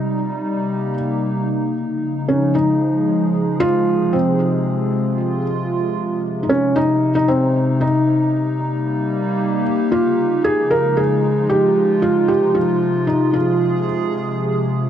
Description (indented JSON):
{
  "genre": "IDM",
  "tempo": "114 BPM",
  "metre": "4/4",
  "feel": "straight",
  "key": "unclear",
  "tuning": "A4 = 440 Hz",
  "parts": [
    { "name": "felt-muted upright piano", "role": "melody", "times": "0.0-13.8 s", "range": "C4 to Bb4", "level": "-18 LUFS", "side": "equal", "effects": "digital delay" },
    { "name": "hollow soft pad", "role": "sustained chords", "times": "0.0-14.9 s", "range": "C3 to Ab4", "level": "-19 LUFS", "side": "equal", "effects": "chorus" }
  ],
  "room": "moderate lush hall reverb, RT60 2.3 s",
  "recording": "dark, warm production",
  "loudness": "-16 LUFS",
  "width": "side -10 dB against mid",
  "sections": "0.0-14.9 A section",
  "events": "none",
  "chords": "0.0 Cm7; 1.5 Dbadd9; 3.6 Ab6; 7.8 Cm7; 9.9 Dbadd9; 12.0 Ab6"
}